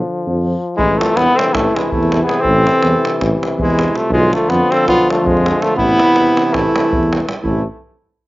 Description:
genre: balkan folk, Balkan brass band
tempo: 324 BPM (eighths)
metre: 9/8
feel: straight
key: A harmonic minor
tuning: A4 = 440 Hz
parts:
  - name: clear euphonium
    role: accompaniment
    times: 0.0-7.6 s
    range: E3 to F3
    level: -21 LUFS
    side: left 3 dB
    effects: slapback echo
  - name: mellow trombone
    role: accompaniment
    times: 0.0-7.6 s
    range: C3 to D3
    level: -25 LUFS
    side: right 3 dB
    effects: none
  - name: mellow tuba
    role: bass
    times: 0.3-7.6 s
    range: A1 to F2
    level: -18 LUFS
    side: equal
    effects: none
  - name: warm flugelhorn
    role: melody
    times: 0.8-7.6 s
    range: G#3 to C4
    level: -16 LUFS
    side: left 1 dB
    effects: slapback echo
  - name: mellow clarinet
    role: second line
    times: 0.8-7.6 s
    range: E4 to A4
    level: -18 LUFS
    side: right 2 dB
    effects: slapback echo
  - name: davul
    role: percussion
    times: 0.8-7.6 s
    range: none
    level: -22 LUFS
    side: right 1 dB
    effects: slapback echo
room: little or no reverb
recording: recorded outdoors, with no room sound, nothing above 7.5 kHz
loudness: -12 LUFS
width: side -18 dB against mid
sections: 0.0-7.4 A section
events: none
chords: 0.0 Bdim (rootless); 0.8 Am; 4.1 Bdim; 5.8 Am

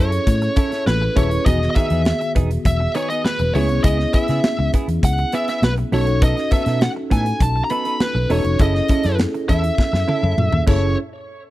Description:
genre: polished 1980s jazz-funk pop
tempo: 101 BPM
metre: 4/4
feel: straight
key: F# dorian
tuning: A4 = 440 Hz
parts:
  - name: bluesy overdriven lead guitar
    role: melody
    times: 0.0-11.0 s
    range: B4 to B5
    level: -23 LUFS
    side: equal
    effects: distortion
  - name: mellow tine electric piano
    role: accompaniment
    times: 0.0-11.0 s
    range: D#3 to B4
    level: -24 LUFS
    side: equal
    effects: medium stereo tremolo, wide subtle chorus
  - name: clean electric guitar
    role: riff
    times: 0.0-10.9 s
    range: B3 to A4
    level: -26 LUFS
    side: right 3 dB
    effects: analog chorus
  - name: fingered electric bass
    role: bass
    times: 0.0-11.0 s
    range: D#1 to C#3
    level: -20 LUFS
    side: equal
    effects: none
  - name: modern studio drum kit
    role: drums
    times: 0.1-10.8 s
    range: crash cymbal, hi-hat, kick drum, snare drum, toms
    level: -19 LUFS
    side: equal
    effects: none
  - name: congas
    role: percussion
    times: 0.3-11.0 s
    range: none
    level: -32 LUFS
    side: left 1 dB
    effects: none
room: small room ambience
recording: dry, close 1970s-style studio recording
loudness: -16 LUFS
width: side -16 dB against mid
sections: 0.0-11.0 A section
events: drum fill 9.8-11.0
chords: 0.0 F#m7; 1.5 Emaj7; 3.5 C#m7; 5.9 B7; 8.6 F#m7; 11.0 N.C.

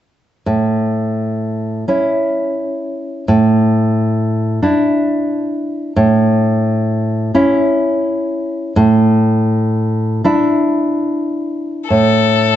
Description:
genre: romantic duo for violin and classical guitar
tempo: 34-45 BPM (dotted quarters)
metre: 6/8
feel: rubato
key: A major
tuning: A4 = 441 Hz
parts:
  - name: nylon-string guitar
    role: accompaniment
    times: 0.5-12.6 s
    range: A2 to E4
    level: -13 LUFS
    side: equal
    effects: none
  - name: clear violin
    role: melody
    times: 11.9-12.6 s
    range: A4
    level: -15 LUFS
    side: left 11 dB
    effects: none
room: moderate scoring stage reverb, RT60 1.5 s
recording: dark, warm production, nothing above 8.0 kHz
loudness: -13 LUFS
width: side -11 dB against mid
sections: 0.5-11.9 A section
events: none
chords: 0.5 A; 3.3 Asus4; 6.0 A; 8.8 Asus4; 11.9 N.C.

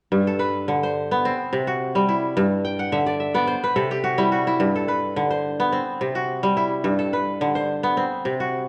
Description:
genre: west african traditional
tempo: 107 BPM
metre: 4/4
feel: straight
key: G major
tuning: A4 = 440 Hz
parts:
  - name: kora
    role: arpeggios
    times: 0.1-8.7 s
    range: G2 to G5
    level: -22 LUFS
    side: equal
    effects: none
room: wet recital hall reverb, RT60 1.6 s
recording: worn, warbling old tape, cassette tape, warbly pitch drift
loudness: -22 LUFS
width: mono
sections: 0.1-8.7 A section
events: kora fill 2.6-4.6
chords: 0.1 G; 1.2 C; 2.4 G; 3.5 C5; 4.6 G; 5.7 C; 6.9 G; 8.0 C

